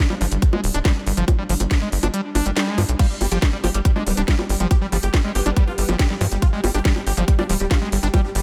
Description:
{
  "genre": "psychedelic trance",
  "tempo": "140 BPM",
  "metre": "4/4",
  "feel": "straight",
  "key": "G major",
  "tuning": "A4 = 440 Hz",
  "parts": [
    { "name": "swarming drone", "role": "sustained chords", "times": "0.1-8.4 s", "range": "G3 to G4", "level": "-34 LUFS", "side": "equal", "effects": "none" },
    { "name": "screaming distorted acid line", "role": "riff", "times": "0.1-8.2 s", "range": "F3 to D4", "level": "-30 LUFS", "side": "equal", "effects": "distortion, chorus, sidechain pumping, dub echo" },
    { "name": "garage drum kit", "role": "drums", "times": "0.1-8.4 s", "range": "bongos, crash cymbal, hi-hat, snare drum", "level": "-27 LUFS", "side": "equal", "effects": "none" },
    { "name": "tight sequencer bass", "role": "bass", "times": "0.2-8.4 s", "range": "D1 to G2", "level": "-24 LUFS", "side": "equal", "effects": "none" },
    { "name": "electronic kick drum", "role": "drums", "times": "0.4-8.2 s", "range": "none", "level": "-20 LUFS", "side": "equal", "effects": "none" },
    { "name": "dense compressed supersaw", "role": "melody", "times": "3.0-8.4 s", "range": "G3 to G4", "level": "-30 LUFS", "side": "equal", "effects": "phaser, sidechain pumping, delay" },
    { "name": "formant-sweep wobble bass", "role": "second line", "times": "4.1-6.0 s", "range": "B3", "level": "-39 LUFS", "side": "equal", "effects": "chorus, sidechain pumping, high-pass filter, digital delay" }
  ],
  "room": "little or no reverb",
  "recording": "none",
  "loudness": "-20 LUFS",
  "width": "mono",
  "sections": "0.0-8.4 A section",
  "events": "kick drops out 2.1-3.0",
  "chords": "0.0 G5"
}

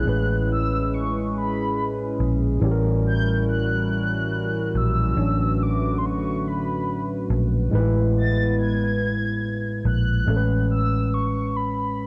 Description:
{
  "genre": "slow six-eight R&B",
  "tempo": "47 BPM (dotted quarters)",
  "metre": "6/8",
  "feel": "straight",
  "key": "A major",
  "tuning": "A4 = 440 Hz",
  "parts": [
    { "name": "mellow horn-like synth lead", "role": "melody", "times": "0.0-12.1 s", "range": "B5 to A6", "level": "-31 LUFS", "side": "equal", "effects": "chorus" },
    { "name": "overdriven tine electric piano", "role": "accompaniment", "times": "0.0-12.1 s", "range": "A2 to B4", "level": "-27 LUFS", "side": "equal", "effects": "cassette tape" },
    { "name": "hollow soft pad", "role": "sustained chords", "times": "0.0-10.2 s", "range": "D3 to B4", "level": "-32 LUFS", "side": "equal", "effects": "chorus, cassette tape" },
    { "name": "vintage muted fingered electric bass", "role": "bass", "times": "0.1-12.1 s", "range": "A1 to Bb1", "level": "-26 LUFS", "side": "equal", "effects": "none" }
  ],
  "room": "digital ambience",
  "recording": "home recording on cassette",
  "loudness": "-23 LUFS",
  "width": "mono",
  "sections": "0.0-12.1 A section",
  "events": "none",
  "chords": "0.0 Amaj9; 2.6 F#7b9/A; 5.2 Bm9/A; 7.7 F#m11/A (rootless); 10.3 Amaj9"
}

